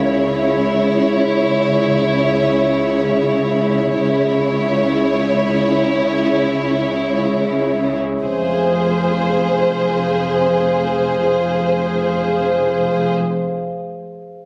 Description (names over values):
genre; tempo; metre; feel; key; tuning
cinematic, suspense film score; free time; none; none; unclear; A4 = 438 Hz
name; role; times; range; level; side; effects
rich studio violin section; second line; 0.0-13.1 s; Fb4 to Db5; -21 LUFS; equal; none
glass harmonica; sustained chords; 0.0-13.1 s; Ab4 to F5; -23 LUFS; equal; none
dark chamber double bass section; bass; 0.0-13.1 s; F1 to Db2; -25 LUFS; equal; none
rich studio cello section; bass; 0.0-13.1 s; F2 to Db3; -25 LUFS; equal; none
saturated sub bass; drone; 0.0-13.1 s; F1 to Db2; -35 LUFS; equal; none
room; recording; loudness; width
moderate scoring stage reverb, RT60 1.7 s; recorded on a phone in the room, club reverb; -17 LUFS; mono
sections
0.0-8.2 A section; 8.2-12.5 B section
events
none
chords
0.0 Dbm; 8.2 Fm